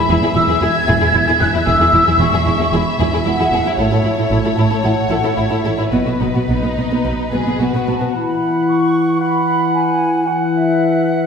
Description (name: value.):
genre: cinematic.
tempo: 113 BPM.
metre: 4/4.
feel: straight.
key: B mixolydian, E major from 8.1 s.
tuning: A4 = 441 Hz.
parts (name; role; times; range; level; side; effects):
warm symphonic violin section; melody; 0.0-7.9 s; B4 to E5; -24 LUFS; left 4 dB; none.
large flute ensemble; second line; 0.0-11.3 s; C#5 to G#6; -19 LUFS; equal; none.
warm symphonic viola section; accompaniment; 0.0-8.1 s; B3 to E4; -21 LUFS; right 1 dB; none.
warm symphonic violin section; second line; 0.1-8.1 s; D#4 to A4; -24 LUFS; left 3 dB; none.
warm studio double bass section; bass; 0.1-7.9 s; E1 to B1; -21 LUFS; right 2 dB; none.
warm symphonic cello section; bass; 0.1-8.1 s; E2 to B2; -20 LUFS; right 1 dB; none.
clear oboe; second line; 8.1-11.3 s; F#5; -23 LUFS; right 2 dB; none.
dark clarinet; second line; 8.1-11.3 s; E4; -18 LUFS; equal; none.
mellow French horn section; sustained chords; 8.1-11.3 s; E3; -20 LUFS; left 5 dB; none.
room: wet scoring stage reverb, RT60 1.9 s.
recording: heard from further back in the room.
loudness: -13 LUFS.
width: side -6 dB against mid.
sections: 0.0-8.1 A section; 8.1-11.3 B section.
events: none.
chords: 0.0 E; 3.8 A; 5.9 B; 8.1 Esus2.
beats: 0.10 0.62 1.14 | 1.67 2.20 2.73 3.26 | 3.78 4.31 4.84 5.38 | 5.93 6.49 7.04 7.59 | 8.14 8.67 9.21 9.74 | 10.27 10.80.